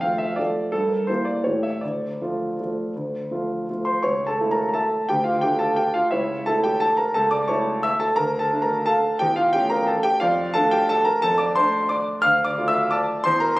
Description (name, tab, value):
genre	classical, piano waltz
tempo	156-187 BPM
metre	3/4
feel	rubato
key	D minor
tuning	A4 = 440 Hz
part	clear concert grand piano	solo	0.0-13.6 s	C#2 to F6	-19 LUFS	equal	none
room	wet recital hall reverb, RT60 1.6 s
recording	recorded on a phone in the room, club reverb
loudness	-19 LUFS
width	side -19 dB against mid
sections	0.0-4.1 A section; 4.1-13.6 B section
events	none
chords	0.0 Dm/F; 0.7 Edim/G; 1.5 A7; 1.8 Dm; 4.1 A/C#; 5.1 Dm; 6.1 A/C#; 8.2 Dm; 9.2 A7/E; 10.2 Dm/F; 12.2 Dm